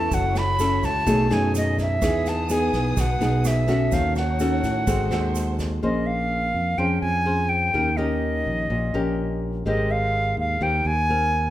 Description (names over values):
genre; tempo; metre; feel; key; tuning
bossa nova; 126 BPM; 4/4; straight; Bb dorian from 5.8 s; A4 = 440 Hz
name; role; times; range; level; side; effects
bright silver concert flute; melody; 0.0-11.5 s; D#5 to B5; -24 LUFS; right 1 dB; none
nylon-string guitar; accompaniment; 0.0-11.5 s; Bb2 to C5; -25 LUFS; left 2 dB; none
rich studio violin section; sustained chords; 0.0-5.8 s; G#3 to D#6; -36 LUFS; equal; none
modern bright fingered electric bass; bass; 0.0-11.5 s; F#1 to A2; -25 LUFS; equal; none
vintage brush drum kit; drums; 0.1-5.6 s; kick drum, rim click, snare drum; -31 LUFS; right 1 dB; none
egg shaker; percussion; 0.1-5.8 s; none; -40 LUFS; right 7 dB; none
room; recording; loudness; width
moderate recital hall reverb, RT60 1.3 s; recorded in a church or concert hall; -20 LUFS; side -13 dB against mid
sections
0.0-5.8 A section; 5.8-11.5 B section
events
none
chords
0.1 F#m7; 1.1 B13; 2.0 Emaj7; 3.9 D#m7b5; 4.9 G#7b9; 5.8 Bbm9; 7.7 Eb7; 9.7 Abmaj9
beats
| 0.11 0.59 1.06 1.54 | 2.02 2.49 2.97 3.44 | 3.92 4.40 4.88 5.35 | 5.83 6.31 6.79 7.26 | 7.74 8.22 8.70 9.18 | 9.65 10.13 10.61 11.09